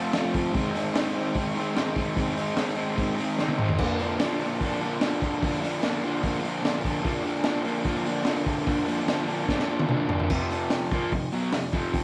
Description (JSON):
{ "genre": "garage rock duo or trio", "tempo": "148 BPM", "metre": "4/4", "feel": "straight", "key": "unclear", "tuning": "A4 = 440 Hz", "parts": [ { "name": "raw garage guitar", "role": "riff", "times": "0.0-12.0 s", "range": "F2 to F4", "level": "-28 LUFS", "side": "equal", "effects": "overdrive" }, { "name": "crunchy breakbeat drum kit", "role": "drums", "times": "0.1-12.0 s", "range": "crash cymbal, hi-hat, kick drum, snare drum, toms", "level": "-31 LUFS", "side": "equal", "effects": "none" } ], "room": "moderate echo chamber reverb, RT60 1.6 s, studio reverb", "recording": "none", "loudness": "-27 LUFS", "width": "mono", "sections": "0.0-10.3 A section; 10.3-12.0 B section", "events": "drum fill 3.4-3.8, 9.5-10.3", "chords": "0.0 F; 0.5 Ab; 3.8 Bb; 10.3 F5", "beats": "0.14 | 0.54 0.95 1.35 1.76 | 2.16 2.57 2.98 3.38 | 3.79 4.19 4.60 5.00 | 5.41 5.82 6.22 6.63 | 7.04 7.45 7.85 8.26 | 8.67 9.07 9.48 9.89 | 10.30 10.71 11.12 11.52 | 11.93" }